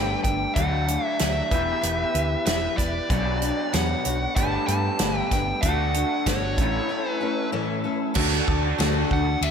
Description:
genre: folk rock and heartland rock.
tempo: 95 BPM.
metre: 4/4.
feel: straight.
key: D major.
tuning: A4 = 441 Hz.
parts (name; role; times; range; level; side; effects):
dark smooth lead guitar; melody; 0.0-9.5 s; C#5 to A5; -28 LUFS; equal; overdrive, tape echo.
picked steel-string acoustic guitar; accompaniment; 0.0-9.5 s; G2 to D5; -29 LUFS; left 4 dB; slapback echo.
tonewheel organ; sustained chords; 0.0-9.5 s; B3 to B4; -38 LUFS; equal; slow rotary speaker.
electric guitar through a small old amp; riff; 0.0-9.5 s; A2 to D5; -28 LUFS; equal; lush chorus, slapback echo.
fingered electric bass; bass; 0.0-9.5 s; E1 to G2; -27 LUFS; equal; none.
natural country drum kit; drums; 0.2-9.5 s; crash cymbal, hi-hat, kick drum, ride cymbal, snare drum; -26 LUFS; right 1 dB; none.
room: moderate lush hall reverb, RT60 2.0 s, small room ambience.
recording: big arena sound.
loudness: -21 LUFS.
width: side -7 dB against mid.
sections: 0.0-8.2 A section; 8.2-9.5 B section.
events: break 6.9-8.2.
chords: 0.0 Gadd9; 0.6 D; 1.5 Em; 3.1 Bmadd9; 4.4 Gadd9; 5.6 D; 6.6 A; 8.2 D.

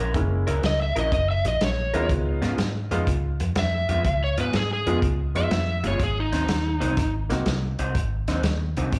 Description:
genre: electric blues shuffle.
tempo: 123 BPM.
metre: 4/4.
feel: swing 67% on 8ths.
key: Db mixolydian.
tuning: A4 = 441 Hz.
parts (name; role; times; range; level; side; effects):
electric guitar through a small old amp; riff; 0.0-9.0 s; Ab2 to Bb4; -33 LUFS; equal; phaser, slapback echo.
vintage muted fingered electric bass; bass; 0.0-9.0 s; Gb1 to Ab2; -28 LUFS; equal; none.
clear upright piano; accompaniment; 0.1-7.5 s; Ab3 to Gb4; -31 LUFS; equal; slapback echo.
vintage drum kit; drums; 0.1-9.0 s; hi-hat, kick drum, snare drum; -31 LUFS; equal; none.
overdriven slide guitar; melody; 0.7-7.1 s; Eb4 to Fb5; -29 LUFS; equal; slapback echo, analog delay.
room: small room ambience.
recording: live gig heard through the venue's PA, club reverb.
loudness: -24 LUFS.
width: mono.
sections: 0.0-9.0 A section.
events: none.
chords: 0.0 Gb7; 2.1 Db7; 6.0 Ab7.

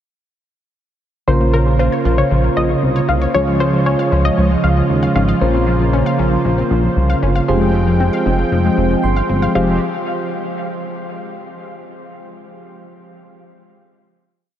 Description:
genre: pop.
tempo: 116 BPM.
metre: 4/4.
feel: straight.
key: F minor.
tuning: A4 = 439 Hz.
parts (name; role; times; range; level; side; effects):
warbly dusty pluck; second line; 1.3-5.2, 9.6-9.8 s; Bb4 to F5; -23 LUFS; left 2 dB; chorus, diffuse ambient delay.
soft electric-piano-like synth keys; accompaniment; 1.3-9.8 s; Db4 to C6; -22 LUFS; right 1 dB; chorus.
brassy analog pad; sustained chords; 1.3-9.8 s; Db3 to G5; -19 LUFS; right 1 dB; chorus.
wide unison pluck; arpeggios; 1.3-9.8 s; Db3 to F5; -24 LUFS; left 2 dB; diffuse ambient delay.
chorused synth bass; bass; 1.3-9.8 s; F1 to Eb2; -17 LUFS; equal; none.
room: wet huge ambient reverb, RT60 7.7 s.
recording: dreamy mix soaked in reverb.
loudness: -13 LUFS.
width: side -10 dB against mid.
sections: 1.3-9.6 chorus; 9.6-11.6 final chord.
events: synth keys fill 8.8-9.6.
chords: 1.3 Bbmadd9; 3.3 Db; 5.4 Bbmadd9; 7.5 Fmadd9.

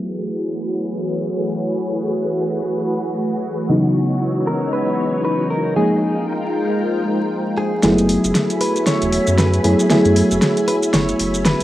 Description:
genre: deep house.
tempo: 116 BPM.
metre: 4/4.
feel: swing 58% on 16ths.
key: F# minor.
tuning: A4 = 440 Hz.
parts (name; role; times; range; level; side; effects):
soft string machine; sustained chords; 0.0-11.6 s; E3 to B5; -23 LUFS; equal; phaser, ensemble chorus.
mellow FM electric piano; stabs; 0.0-11.6 s; C#3 to G#4; -20 LUFS; equal; chorus, low-pass filter.
warbly tape-like pad; texture; 0.0-11.6 s; G#3 to E6; -26 LUFS; equal; chorus, built-in reverb.
direct-recorded clean electric guitar; melody; 4.5-11.6 s; Ab4 to C#5; -23 LUFS; equal; cassette tape, tape echo.
round analog bass; bass; 7.8-11.6 s; E1 to F#2; -21 LUFS; equal; none.
deep house drum kit; drums; 7.8-11.6 s; hi-hat, snare drum; -20 LUFS; equal; overdrive, low-pass filter on hats, studio reverb, cassette tape, low-pass filter on snare, low-pass filter on cymbals.
maracas; percussion; 7.8-11.6 s; none; -29 LUFS; right 1 dB; none.
room: wet studio ambience, RT60 0.5 s.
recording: home recording on cassette, vinyl crackle, low-pass filter.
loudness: -16 LUFS.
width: side -14 dB against mid.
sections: 0.0-7.8 A section; 7.8-11.6 B section.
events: filter sweep on drum 0.0-7.8; filter sweep 0.0-7.8; build-up 7.8-11.6; drum fill 7.8-11.6.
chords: 0.0 F#m11; 3.7 C#m11; 5.8 Fm11; 7.8 F#m11.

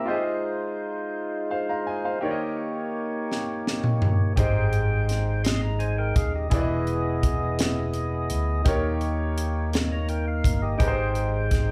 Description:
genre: slow gospel.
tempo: 56 BPM (dotted quarters).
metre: 6/8.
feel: straight.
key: Ab major.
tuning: A4 = 441 Hz.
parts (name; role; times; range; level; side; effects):
bright concert grand piano; accompaniment; 0.0-11.7 s; Ab2 to Bb5; -33 LUFS; equal; none.
tonewheel organ; sustained chords; 0.0-11.7 s; Ab3 to C6; -31 LUFS; equal; fast rotary speaker, overdrive.
crisp fusion drum kit; drums; 3.3-11.7 s; hi-hat, kick drum, snare drum, toms; -27 LUFS; equal; none.
fingered electric bass; bass; 4.4-11.7 s; Eb1 to Eb2; -29 LUFS; equal; none.
room: light reverb.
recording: band playing live in one room.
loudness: -25 LUFS.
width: mono.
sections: 0.0-11.7 A section.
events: drum fill 3.3-4.4.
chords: 0.1 Fm7; 2.2 Eb7; 4.4 Abmaj7; 6.5 Emaj7; 8.7 Eb7; 10.8 Abmaj7.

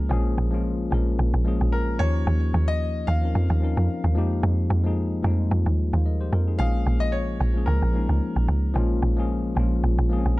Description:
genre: amapiano.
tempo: 111 BPM.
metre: 4/4.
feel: swing 55% on 16ths.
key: Bb dorian.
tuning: A4 = 440 Hz.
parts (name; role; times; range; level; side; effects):
tine electric piano; accompaniment; 0.0-10.4 s; F3 to F5; -28 LUFS; left 3 dB; none.
woody log drum bass; bass; 0.0-10.4 s; Bb1 to F2; -22 LUFS; equal; none.
warm concert grand piano; melody; 1.7-10.4 s; Bb4 to F5; -32 LUFS; left 2 dB; digital delay.
room: little or no reverb.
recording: none.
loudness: -21 LUFS.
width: side -19 dB against mid.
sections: 0.0-10.4 A section.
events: none.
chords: 0.0 Bbm7; 2.0 Eb13; 4.2 Fm11; 6.6 Bbm7.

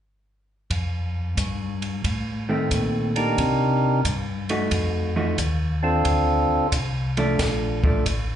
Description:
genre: soul jazz organ trio.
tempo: 90 BPM.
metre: 4/4.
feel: swing 67% on 8ths.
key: F mixolydian.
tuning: A4 = 438 Hz.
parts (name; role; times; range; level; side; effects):
mellow tonewheel organ; bass; 0.7-8.4 s; A1 to C3; -25 LUFS; left 1 dB; chorus vibrato, slow rotary speaker.
compact cocktail drum kit; drums; 0.7-8.3 s; hi-hat, kick drum, ride cymbal, snare drum; -28 LUFS; equal; none.
vintage hollow-body jazz guitar; accompaniment; 2.5-8.0 s; Eb3 to Gb4; -24 LUFS; right 1 dB; slapback echo.
percussive tonewheel organ; melody; 3.2-6.7 s; C4 to Bb4; -21 LUFS; right 1 dB; overdrive, stopped rotary speaker, slapback echo.
room: moderate club reverb, RT60 0.7 s.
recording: live gig heard through the venue's PA, club reverb, nothing above 10.6 kHz, faint mains hum.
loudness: -21 LUFS.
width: side -10 dB against mid.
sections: 0.7-8.4 A section.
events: none.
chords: 0.7 F7; 3.4 Cm9; 4.7 F7b9; 6.1 Bbmaj7.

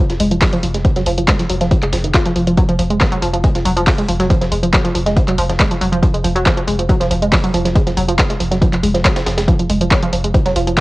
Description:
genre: driving peak-time techno.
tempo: 139 BPM.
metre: 4/4.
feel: straight.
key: F phrygian.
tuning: A4 = 439 Hz.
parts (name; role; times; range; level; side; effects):
analog pluck; riff; 0.0-10.8 s; Eb3 to F4; -17 LUFS; right 1 dB; chorus, tube saturation, sidechain pumping, cassette tape, analog delay.
saturated sub bass; bass; 0.1-10.8 s; F1; -21 LUFS; equal; sidechain pumping, low-pass filter.
breakbeat sampler-style drum kit; drums; 0.1-10.8 s; hi-hat, snare drum; -28 LUFS; equal; none.
punchy analog drum machine; drums; 0.1-10.8 s; handclaps, hi-hat; -20 LUFS; equal; cassette tape.
electronic kick drum; drums; 0.4-10.8 s; none; -15 LUFS; equal; cassette tape.
room: moderate small room reverb, RT60 0.6 s.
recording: home recording on cassette.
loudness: -13 LUFS.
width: side -20 dB against mid.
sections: 0.0-10.8 A section.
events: none.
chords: none.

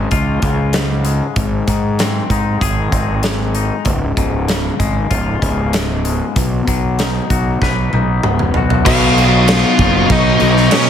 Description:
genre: quiet-loud alternative rock.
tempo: 96 BPM.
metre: 4/4.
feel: straight.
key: Db major.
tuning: A4 = 441 Hz.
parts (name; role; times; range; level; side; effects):
twangy electric guitar; arpeggios; 0.0-8.9 s; Db2 to Cb5; -21 LUFS; left 10 dB; wide subtle chorus.
fuzz fingered electric bass; bass; 0.0-10.7 s; Db1 to Ab2; -17 LUFS; right 1 dB; overdrive.
big rock drum kit; drums; 0.1-10.9 s; crash cymbal, hi-hat, kick drum, snare drum, toms; -18 LUFS; right 1 dB; none.
thick fuzz guitar; riff; 8.8-10.9 s; Cb3 to Cb5; -18 LUFS; right 14 dB; distortion.
nasal lead guitar with a parked wah; melody; 8.9-10.9 s; Db4 to F5; -16 LUFS; left 3 dB; overdrive.
muted studio string section; sustained chords; 8.9-10.9 s; Cb5 to Db6; -25 LUFS; left 3 dB; none.
crunchy overdriven guitar; riff; 8.9-10.9 s; Cb3 to Cb4; -17 LUFS; left 12 dB; none.
high-gain distorted guitar; riff; 8.9-10.9 s; Cb3 to Cb5; -20 LUFS; equal; distortion.
room: light reverb.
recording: heavily compressed radio sound.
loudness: -13 LUFS.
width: side -9 dB against mid.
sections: 0.0-8.9 A section; 8.9-10.9 B section.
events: drum fill 7.6-8.9.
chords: 0.0 Db; 1.4 Ab; 3.9 Db; 6.4 Cb; 8.9 Cbadd9.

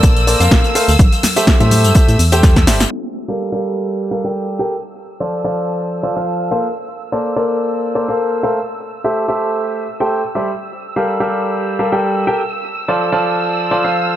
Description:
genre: piano house.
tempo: 125 BPM.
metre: 4/4.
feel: swing 55% on 16ths.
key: G dorian.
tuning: A4 = 440 Hz.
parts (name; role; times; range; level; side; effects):
warm symphonic violin section; sustained chords; 0.0-14.2 s; E6; -25 LUFS; right 2 dB; sidechain pumping.
bright concert grand piano; riff; 0.0-14.2 s; F3 to G5; -17 LUFS; equal; sidechain pumping, dub echo.
organ-like FM bass; bass; 0.0-2.9 s; G1 to A2; -14 LUFS; equal; sidechain pumping.
electronic kick drum; drums; 0.0-2.7 s; none; -11 LUFS; equal; overdrive.
punchy analog drum machine; drums; 0.0-2.9 s; cabasa, hi-hat, snare drum; -19 LUFS; equal; overdrive.
tambourine and congas; percussion; 0.0-2.9 s; none; -24 LUFS; left 4 dB; none.
room: light reverb, studio ambience.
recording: low-pass filter.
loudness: -13 LUFS.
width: side -12 dB against mid.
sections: 0.0-2.9 A section; 2.9-14.2 B section.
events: drum fill 2.4-2.9; band accent 2.8; filter sweep 2.9-14.2.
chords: 0.0 Bbmaj9; 1.0 Am7; 2.9 Gm9; 4.8 F6; 6.8 Bbmaj9; 8.7 Am7; 10.6 Gm9; 12.5 F6.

